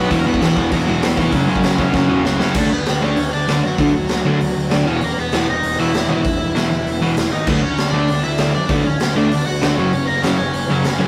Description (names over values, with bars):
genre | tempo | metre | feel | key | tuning
punk rock | 196 BPM | 4/4 | straight | unclear | A4 = 438 Hz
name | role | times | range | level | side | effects
cranked stack guitar | melody | 0.0-11.1 s | F#3 to F#5 | -25 LUFS | equal | overdrive, tape echo
overdriven electric guitar | riff | 0.0-11.1 s | E2 to D4 | -23 LUFS | equal | none
sludgy distorted guitar | riff | 0.0-11.1 s | E2 to D4 | -24 LUFS | equal | overdrive
thick fuzz guitar | riff | 0.0-2.5 s | E2 to B3 | -28 LUFS | equal | none
fuzz picked electric bass | bass | 0.0-11.1 s | E1 to F#2 | -26 LUFS | equal | overdrive
raw garage drum kit | drums | 0.1-10.9 s | crash cymbal, hi-hat, kick drum, snare drum | -24 LUFS | equal | none
room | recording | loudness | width
light reverb | rough rehearsal-room recording, warm saturation | -17 LUFS | mono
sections
0.0-2.6 A section; 2.6-11.1 B section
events
drum fill 1.9-2.6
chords
0.1 E5; 1.3 F#5; 2.6 D; 4.9 E5; 7.5 D; 9.8 F#